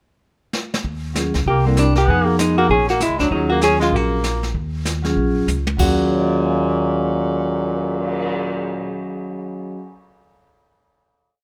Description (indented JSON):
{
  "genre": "jazz, small-group swing and bop",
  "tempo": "194 BPM",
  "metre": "4/4",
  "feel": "swing 61% on 8ths",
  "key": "Eb minor",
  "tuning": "A4 = 440 Hz",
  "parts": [
    { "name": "jazz brush drum kit", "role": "drums", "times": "0.5-8.2 s", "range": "brushed snare drum, crash cymbal, cymbal swell, hi-hat, kick drum, snare drum, toms", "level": "-29 LUFS", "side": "equal", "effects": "none" },
    { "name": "upright bass", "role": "bass", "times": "0.8-9.7 s", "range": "Bb1 to F2", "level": "-25 LUFS", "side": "equal", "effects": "none" },
    { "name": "vibraphone with medium hard mallets", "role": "accompaniment", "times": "1.1-10.0 s", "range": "F3 to Db6", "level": "-24 LUFS", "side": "equal", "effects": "none" },
    { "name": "hollow-body jazz guitar", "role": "melody", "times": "1.5-9.7 s", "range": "Bb3 to Ab4", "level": "-22 LUFS", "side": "equal", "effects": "none" },
    { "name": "clear tenor saxophone", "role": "second line", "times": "1.5-9.0 s", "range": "Bb2 to Db4", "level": "-25 LUFS", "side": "equal", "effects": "none" }
  ],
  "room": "light reverb",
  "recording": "none",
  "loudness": "-19 LUFS",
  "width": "mono",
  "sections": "0.0-0.8 pickup bar; 0.8-5.8 A section; 5.8-8.3 final chord",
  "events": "drum fill 0.5-0.8, 5.5-5.8",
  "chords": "0.0 N.C.; 0.8 Ebm11; 1.5 C7; 2.1 Fm7b5; 2.7 Bb7alt; 3.3 Ebm11"
}